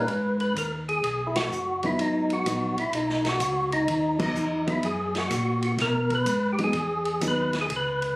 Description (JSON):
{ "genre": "soul jazz organ trio", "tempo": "126 BPM", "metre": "4/4", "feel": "swing 67% on 8ths", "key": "G# minor", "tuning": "A4 = 440 Hz", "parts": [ { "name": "percussive tonewheel organ", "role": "melody", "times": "0.0-8.2 s", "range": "D#4 to B4", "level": "-26 LUFS", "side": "equal", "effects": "slow rotary speaker, overdrive" }, { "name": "mellow tonewheel organ", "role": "bass", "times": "0.0-8.2 s", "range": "F#1 to B2", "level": "-30 LUFS", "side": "equal", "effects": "slow rotary speaker" }, { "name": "swinging big-band drum kit", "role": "drums", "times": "0.1-8.1 s", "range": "crash cymbal, hi-hat, kick drum, ride cymbal, snare drum", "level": "-34 LUFS", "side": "equal", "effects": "none" }, { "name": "hollow-body jazz guitar", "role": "accompaniment", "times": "1.8-7.5 s", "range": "F#3 to D#4", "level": "-28 LUFS", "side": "equal", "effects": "none" } ], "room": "light reverb", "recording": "recorded on a phone in the room, studio ambience", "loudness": "-23 LUFS", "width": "side -22 dB against mid", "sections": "0.1-8.2 A section", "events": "band accent 1.3, 4.1", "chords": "0.1 G#m7", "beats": "| 0.09 0.56 1.04 1.51 | 1.99 2.46 2.94 3.42 | 3.89 4.37 4.85 5.32 | 5.80 6.28 6.75 7.23 | 7.70" }